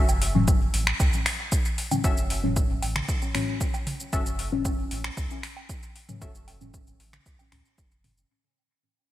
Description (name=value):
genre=dub techno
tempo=115 BPM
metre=4/4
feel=straight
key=unclear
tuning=A4 = 438 Hz
part: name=filtered dub chord stab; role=riff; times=0.0-6.3 s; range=Db4 to Fb5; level=-35 LUFS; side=left 2 dB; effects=chorus, sidechain pumping, dub echo
part: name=pure sine sub bass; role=bass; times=0.0-8.2 s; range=Gb1 to Db2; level=-30 LUFS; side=equal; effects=sidechain pumping
part: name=deep house drum kit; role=drums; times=0.1-8.3 s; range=cabasa, finger snaps, hi-hat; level=-30 LUFS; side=equal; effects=overdrive, dub echo
part: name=electronic woodblock and toms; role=percussion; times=0.1-8.1 s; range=none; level=-37 LUFS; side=right 3 dB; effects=sidechain pumping on perc, sidechain pumping on toms, dub echo
part: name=deep mellow chord stab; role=stabs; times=0.3-8.2 s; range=A2 to Db4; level=-28 LUFS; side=left 2 dB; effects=chorus, phaser, dub echo
part: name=electronic kick drum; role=drums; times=0.5-7.9 s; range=none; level=-25 LUFS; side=equal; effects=overdrive
room=light reverb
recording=bright 1980s-style digital production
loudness=-23 LUFS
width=side -14 dB against mid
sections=0.0-8.3 A section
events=fade-out 0.0-8.3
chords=0.0 Gbm7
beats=0.48 1.00 1.52 | 2.04 2.56 3.09 3.61 | 4.13 4.65 5.17 5.69 | 6.22 6.74 7.26 7.78